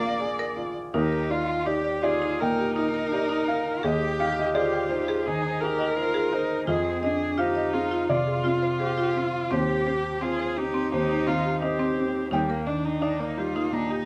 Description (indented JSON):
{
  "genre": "neoclassical piano and strings",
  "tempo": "84 BPM",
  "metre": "4/4",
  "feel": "rubato",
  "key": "Eb major",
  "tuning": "A4 = 440 Hz",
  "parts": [
    { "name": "warm cello", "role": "second line", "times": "0.0-14.1 s", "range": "Bb3 to G4", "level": "-34 LUFS", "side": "equal", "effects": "none" },
    { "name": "felt-muted upright piano", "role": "accompaniment", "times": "0.0-14.1 s", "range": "Bb1 to Bb5", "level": "-30 LUFS", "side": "equal", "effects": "none" },
    { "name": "warm viola", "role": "accompaniment", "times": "0.0-14.1 s", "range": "G3 to D5", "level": "-32 LUFS", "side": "equal", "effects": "none" },
    { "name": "buzzing marimba with medium hard mallets", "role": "arpeggios", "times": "0.0-14.0 s", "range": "C4 to G5", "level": "-32 LUFS", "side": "equal", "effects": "none" }
  ],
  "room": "moderate studio reverb, RT60 0.5 s",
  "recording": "band playing live in one room",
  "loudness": "-26 LUFS",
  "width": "mono",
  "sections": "0.9-14.1 A section",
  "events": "none",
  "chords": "0.0 Bb7; 0.9 Ebmaj7; 3.8 Abmaj7/Eb; 6.7 Fm7; 9.5 Cm/Eb; 12.3 Ebmaj7",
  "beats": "0.20 | 0.94 1.66 2.40 3.12 | 3.84 4.55 5.26 5.97 | 6.67 7.38 8.10 8.81 | 9.52 10.23 10.93 11.63 | 12.33 13.03 13.73"
}